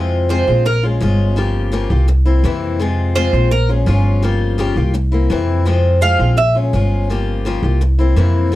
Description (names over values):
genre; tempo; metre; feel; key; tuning
latin; 168 BPM; 4/4; straight; F harmonic minor; A4 = 440 Hz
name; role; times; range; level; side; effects
picked old ladder-braced acoustic guitar; accompaniment; 0.0-8.6 s; C3 to G4; -19 LUFS; left 4 dB; none
upright bass; bass; 0.0-8.6 s; G1 to F2; -15 LUFS; equal; none
Cuban tres; arpeggios; 0.3-0.8, 3.2-3.7, 6.0-6.6 s; Bb4 to F5; -17 LUFS; right 2 dB; none
room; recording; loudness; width
light reverb; cassette tape; -13 LUFS; side -15 dB against mid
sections
0.0-8.6 A section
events
Cuban tres solo 0.0-8.6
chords
0.0 Fm; 0.7 Bbm7; 1.4 Gm7b5; 2.1 C7; 2.8 Fm; 3.5 Bbm7; 4.2 Gm7b5; 4.9 C7; 5.7 Fm; 6.4 Bbm7; 7.1 Gm7b5; 7.8 C7